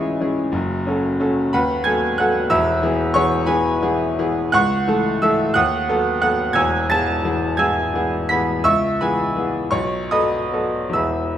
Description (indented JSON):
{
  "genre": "classical, romantic character piece for solo piano",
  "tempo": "46-62 BPM (dotted quarters)",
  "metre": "6/8",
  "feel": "rubato",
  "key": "E major",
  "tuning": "A4 = 436 Hz",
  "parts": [
    { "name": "bright grand piano", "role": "solo", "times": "0.0-11.4 s", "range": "E1 to B6", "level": "-17 LUFS", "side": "equal", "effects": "none" }
  ],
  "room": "moderate recital hall reverb, RT60 1.5 s",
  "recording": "minimal, uncompressed stereo recording",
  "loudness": "-17 LUFS",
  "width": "side -10 dB against mid",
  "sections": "0.0-11.4 A section",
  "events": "none",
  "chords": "0.0 C#m; 0.5 F#m; 1.5 B7/D#; 2.5 E; 4.6 A/C#; 5.6 B7/D#; 6.6 E; 8.7 C#m7; 9.7 B7"
}